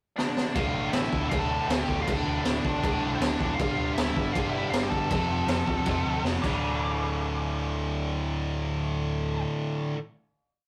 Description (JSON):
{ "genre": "punk rock", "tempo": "158 BPM", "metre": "4/4", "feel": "straight", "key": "D minor", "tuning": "A4 = 440 Hz", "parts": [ { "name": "nasal lead guitar with a parked wah", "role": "melody", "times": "0.2-9.4 s", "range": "D4 to D6", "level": "-34 LUFS", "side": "equal", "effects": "overdrive" }, { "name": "raw garage drum kit", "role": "drums", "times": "0.2-6.5 s", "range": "crash cymbal, kick drum, snare drum", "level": "-31 LUFS", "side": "equal", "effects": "none" }, { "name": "crunchy overdriven guitar", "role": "riff", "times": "0.5-10.0 s", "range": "D2 to G3", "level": "-35 LUFS", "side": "equal", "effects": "none" }, { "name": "tight distorted guitar", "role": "riff", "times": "0.6-10.0 s", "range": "D2 to G3", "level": "-35 LUFS", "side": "equal", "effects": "distortion" }, { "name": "overdriven picked electric bass", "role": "bass", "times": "0.6-9.4 s", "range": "D1 to D2", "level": "-36 LUFS", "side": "equal", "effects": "none" } ], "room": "light reverb", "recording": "rough rehearsal-room recording, warm saturation", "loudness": "-28 LUFS", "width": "mono", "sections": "0.0-0.6 pickup bar; 0.6-6.6 riff; 6.6-9.7 final hit", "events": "drum fill 0.2-0.6, 6.3-6.6", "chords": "0.0 N.C.; 0.6 Dm; 3.6 G5; 5.1 F; 6.4 D5" }